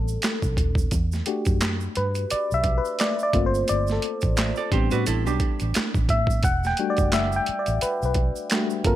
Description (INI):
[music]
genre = R&B, neo-soul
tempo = 87 BPM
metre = 4/4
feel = swing 57% on 16ths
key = E minor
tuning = A4 = 443 Hz
[part]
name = FM electric piano with auto-pan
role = accompaniment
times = 0.0-9.0 s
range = G3 to G5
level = -25 LUFS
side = left 2 dB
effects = none
[part]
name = vintage muted fingered electric bass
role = bass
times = 0.0-9.0 s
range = D#1 to A2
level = -26 LUFS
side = right 1 dB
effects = none
[part]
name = tube shaker and finger snaps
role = percussion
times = 0.1-8.8 s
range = none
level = -36 LUFS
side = right 6 dB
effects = none
[part]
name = boom bap sampler-style drum kit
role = drums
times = 0.2-9.0 s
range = handclaps, hi-hat, kick drum, snare drum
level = -25 LUFS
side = right 1 dB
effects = overdrive
[part]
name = archtop guitar, miked and amplified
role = second line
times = 4.4-6.3 s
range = D4 to E5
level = -29 LUFS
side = right 8 dB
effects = tape echo
[sound]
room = light reverb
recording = none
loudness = -21 LUFS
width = side -13 dB against mid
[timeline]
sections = 0.0-9.0 A section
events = FM electric piano solo 0.0-9.0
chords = 0.0 Am11; 0.9 Em11; 3.3 Gm11; 4.7 Am11; 6.4 Em11